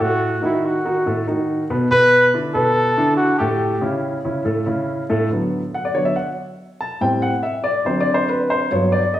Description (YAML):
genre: jazz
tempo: 141 BPM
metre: 4/4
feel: straight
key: D major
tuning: A4 = 439 Hz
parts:
  - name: breathy trumpet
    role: melody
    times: 0.0-4.0 s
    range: E4 to B4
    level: -17 LUFS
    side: equal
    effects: none
  - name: dark baby grand piano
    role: accompaniment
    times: 0.0-9.2 s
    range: G2 to A5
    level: -18 LUFS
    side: equal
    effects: none
room: wet large studio reverb, RT60 1.4 s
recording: heard from further back in the room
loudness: -16 LUFS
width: side -13 dB against mid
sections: 0.0-5.3 A section; 5.3-9.2 B section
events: grand piano solo 5.3-9.2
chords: 0.2 B7; 1.9 E7sus4; 3.6 A7; 5.3 D6; 7.0 Am7; 7.9 D7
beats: | 0.20 0.62 1.05 1.48 | 1.90 2.33 2.75 3.18 | 3.60 4.03 4.45 4.88 | 5.30 5.73 6.15 6.58 | 7.01 7.43 7.86 8.28 | 8.71 9.13